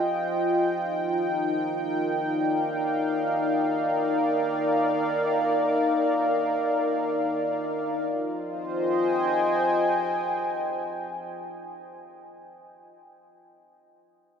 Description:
ambient; free time; F dorian; A4 = 439 Hz
warm analog pad; sustained chords; 0.0-12.2 s; Eb4 to Ab5; -24 LUFS; equal; chorus
wet cathedral reverb, RT60 6.2 s; dark, warm production; -23 LUFS; side -7 dB against mid
0.0-8.1 A section; 8.1-11.7 B section
0.0 Fm7; 0.8 Ebmaj9; 8.1 Fm7

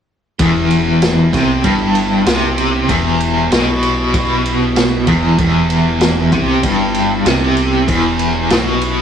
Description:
psychedelic rock; 96 BPM; 4/4; straight; E minor; A4 = 440 Hz
tonewheel organ; sustained chords; 0.4-9.0 s; E3 to G4; -24 LUFS; right 1 dB; chorus vibrato, stopped rotary speaker
overdriven electric guitar; riff; 0.4-9.0 s; E2 to C3; -13 LUFS; equal; tremolo
deep dub picked electric bass; bass; 0.4-9.0 s; E1 to C2; -22 LUFS; equal
vintage drum kit; drums; 0.4-9.0 s; kick drum, ride cymbal, snare drum; -18 LUFS; equal
wet small room reverb, RT60 0.5 s; rough rehearsal-room recording; -12 LUFS; side -8 dB against mid
0.4-9.0 A section
0.4 Em

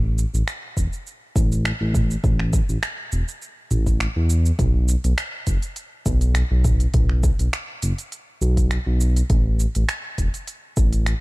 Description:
organic downtempo; 102 BPM; 4/4; swing 54% on 16ths; A4 = 440 Hz
smooth synth bass; bass; 0.0-11.1 s; E1 to E2; -19 LUFS; equal; tube saturation
organic electronic drum kit; drums; 0.2-11.2 s; finger snaps, hi-hat, shaker, toms; -28 LUFS; right 1 dB; studio reverb
electronic kick drum; drums; 0.8-10.9 s; -22 LUFS; equal; studio reverb
little or no reverb; -19 LUFS; side -21 dB against mid
0.0-11.2 A section

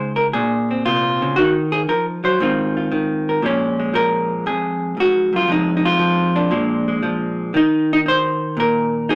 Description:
solo jazz; 117 BPM; 4/4; swing 69% on 8ths; A4 = 440 Hz
vintage hollow-body jazz guitar; solo; 0.0-9.2 s; F2 to C5; -18 LUFS; equal
wet studio reverb, RT60 0.7 s; -19 LUFS; mono
0.0-3.4 A section; 3.4-9.2 B section
0.3 Bbm9; 1.4 Ebmadd9; 2.4 Ab69; 3.4 Bbm7; 5.5 Fm7; 6.5 Bb7; 7.5 Eb5

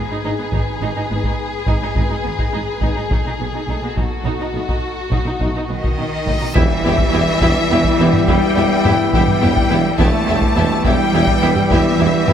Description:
cinematic, epic orchestral film score; 70 BPM (dotted quarters); 12/8; straight; E minor from 6.6 s; A4 = 440 Hz
warm studio violin section; melody; 0.0-12.3 s; A4 to A5; -24 LUFS; left 4 dB
warm symphonic violin section; second line; 0.0-12.3 s; F#4 to E5; -25 LUFS; left 3 dB
warm studio viola section; accompaniment; 0.1-12.3 s; B3 to E4; -25 LUFS; right 1 dB
rich symphonic cello section; bass; 0.1-12.3 s; G#2 to A3; -24 LUFS; right 1 dB
dark French horn section; sustained chords; 0.2-12.3 s; A3 to E4; -25 LUFS; left 5 dB
rich symphonic double bass section; bass; 0.2-12.3 s; G#1 to E2; -23 LUFS; right 4 dB
solo taiko drums; drums; 0.5-12.3 s; -21 LUFS; equal
reverse cymbal and impact; sound effects; 6.2-10.0 s; -30 LUFS; equal
bright trombone section; sustained chords; 6.5-12.3 s; E3 to G3; -24 LUFS; right 5 dB
warm woodwind section; sustained chords; 6.5-12.3 s; B3 to E5; -25 LUFS; left 1 dB
warm tuba; bass; 6.6-12.3 s; E1; -23 LUFS; right 2 dB
moderate scoring stage reverb, RT60 1.9 s; -14 LUFS; side -9 dB against mid
0.0-6.6 A section; 6.6-12.3 B section
build-up 0.0-6.6; reverse cymbal 6.2-6.6; impact 6.6-10.0
0.0 G#m; 3.1 B7; 6.6 Em

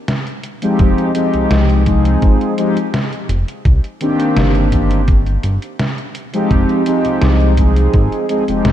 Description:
vaporwave; 84 BPM; 4/4; straight; F dorian; A4 = 441 Hz
detuned 8-bit digital drum machine; drums; 0.1-8.7 s; hi-hat, snare drum; -21 LUFS; equal
mellow synth brass; accompaniment; 0.6-8.7 s; Eb3 to Ab4; -16 LUFS; left 1 dB; wide subtle chorus, cassette tape, tape echo
chorused synth bass; bass; 0.8-8.7 s; F1 to C2; -14 LUFS; equal
electronic kick drum; drums; 0.8-8.1 s; -14 LUFS; equal
moderate lush hall reverb, RT60 1.9 s, digital ambience; dreamy mix soaked in reverb, cassette tape; -12 LUFS; side -11 dB against mid
0.0-8.7 A section
0.0 Cm; 3.7 Cm9; 6.5 Fm9

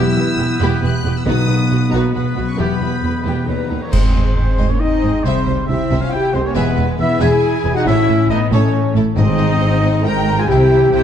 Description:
cinematic, heroic adventure film score; 137 BPM; 3/4; straight; A4 = 441 Hz
warm symphonic violin section; melody; 0.0-11.0 s; B4 to F#6; -29 LUFS; left 4 dB
clear clarinet; second line; 0.0-3.7 s; B3 to D#4; -26 LUFS; left 1 dB
clear oboe; second line; 0.0-11.0 s; B4 to Bb5; -28 LUFS; right 2 dB
silver concert flute; second line; 0.0-11.0 s; B4 to G6; -27 LUFS; left 1 dB
warm symphonic violin section; second line; 0.0-11.0 s; D#4 to F#5; -28 LUFS; left 2 dB
clear symphonic viola section; accompaniment; 0.0-11.0 s; G3 to G5; -24 LUFS; right 1 dB
dark French horn section; sustained chords; 0.0-11.0 s; G3 to Bb4; -20 LUFS; left 2 dB
concert harp; arpeggios; 0.0-11.0 s; Ab2 to E6; -23 LUFS; left 7 dB
warm symphonic double bass section; bass; 0.0-11.0 s; E1 to D#2; -20 LUFS; right 3 dB
warm symphonic cello section; bass; 0.1-11.0 s; D#2 to C3; -22 LUFS; right 2 dB
cymbal swell, clash cymbals and concert bass drum; percussion; 1.3-4.8 s; -20 LUFS; right 1 dB
timpani; percussion; 1.3-1.9, 9.2-9.8 s; Ab2 to B2; -21 LUFS; left 1 dB
wet scoring stage reverb, RT60 2.0 s; dark, warm production; -13 LUFS; side -9 dB against mid
0.0-3.9 A section; 3.9-11.0 B section
band accent 3.9-4.4
0.0 Em; 1.3 B; 2.6 Em; 3.5 D#7; 3.9 Ab; 5.3 C; 6.6 E; 7.9 A; 9.2 Ab; 10.5 C

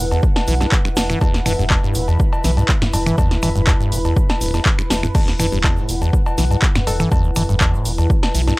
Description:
acid house; 122 BPM; 4/4; straight; E minor; A4 = 440 Hz
liquid acid bass; riff; 0.0-8.5 s; E1 to G3; -20 LUFS; equal; phaser, sidechain pumping
round analog bass; bass; 0.0-8.5 s; D1 to B1; -22 LUFS; equal; sidechain pumping
warbly tape-like pad; texture; 0.0-8.6 s; E4 to B5; -26 LUFS; equal; chorus, built-in reverb, sidechain pumping
punchy analog drum machine; drums; 0.1-8.6 s; cowbell, crash cymbal, finger snaps, handclaps, hi-hat, snare drum, toms; -21 LUFS; equal
tube shaker; percussion; 0.1-8.6 s; -37 LUFS; left 1 dB
electronic kick drum; drums; 0.2-8.2 s; -17 LUFS; equal
hollow square pluck; melody; 6.9-7.1 s; A4; -31 LUFS; equal; chorus, tape echo
light reverb; dry, gritty hardware recording; -14 LUFS; side -21 dB against mid
0.0-8.6 A section
0.0 E5

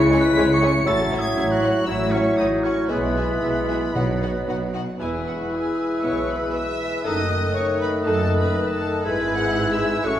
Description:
quick classical-period movement for symphony orchestra; 118 BPM; 4/4; rubato; E major; A4 = 440 Hz
rich chamber violin section; melody; 0.0-10.2 s; F#5 to C#7; -32 LUFS; left 3 dB
clear oboe; second line; 0.0-10.2 s; B3 to E5; -30 LUFS; right 1 dB
mellow French horn section; sustained chords; 0.0-10.2 s; F#3 to E4; -25 LUFS; left 2 dB
rich chamber double bass section; bass; 0.0-10.2 s; E1 to C#2; -29 LUFS; right 2 dB
rich symphonic cello section; bass; 0.0-10.2 s; E2 to C#3; -29 LUFS; right 2 dB
concert flute; second line; 0.1-10.2 s; D#5 to G#6; -31 LUFS; equal
mellow clarinet; second line; 0.1-10.2 s; F#4 to C#5; -29 LUFS; left 1 dB
rich chamber violin section; second line; 0.1-10.2 s; F#4 to F#5; -31 LUFS; left 3 dB
mellow bassoon; accompaniment; 0.1-10.2 s; D#3 to A3; -27 LUFS; right 1 dB
rich studio viola section; accompaniment; 0.1-10.2 s; B3 to A4; -31 LUFS; right 1 dB
timpani; percussion; 4.0-4.7 s; B2; -28 LUFS; equal
wet recital hall reverb, RT60 1.7 s; recorded in a church or concert hall; -19 LUFS; side -11 dB against mid
0.0-5.0 A section; 5.0-10.2 B section
0.0 C#m; 0.9 F#m7/A; 2.9 E/B; 3.9 B; 5.0 E; 7.1 D#dim/F#; 9.1 E/G#

